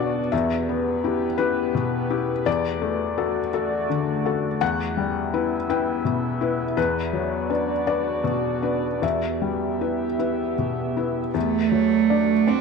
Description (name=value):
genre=neoclassical piano and strings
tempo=51-56 BPM (dotted quarters)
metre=6/8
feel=rubato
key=E minor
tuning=A4 = 439 Hz
part: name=felt-muted upright piano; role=accompaniment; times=0.0-12.6 s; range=E2 to G5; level=-23 LUFS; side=left 7 dB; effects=none
part: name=warbly tape-like pad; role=sustained chords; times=0.0-12.6 s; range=A3 to E5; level=-27 LUFS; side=right 2 dB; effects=chorus, built-in reverb, phaser
part: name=rich cello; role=second line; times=11.4-12.6 s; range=A3 to C4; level=-19 LUFS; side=right 11 dB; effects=none
room=wet spring reverb, RT60 1.4 s, studio reverb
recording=1960s-style stereo with parts hard left and right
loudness=-21 LUFS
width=side -4 dB against mid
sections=0.0-11.4 A section; 11.4-12.6 A section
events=none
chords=0.3 Em; 2.5 D/E; 4.6 Em; 6.8 Bm/E; 9.0 Em; 11.4 D/E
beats=| 0.32 1.39 | 2.46 3.53 | 4.61 5.69 | 6.77 7.87 | 9.03 10.19 | 11.35 12.48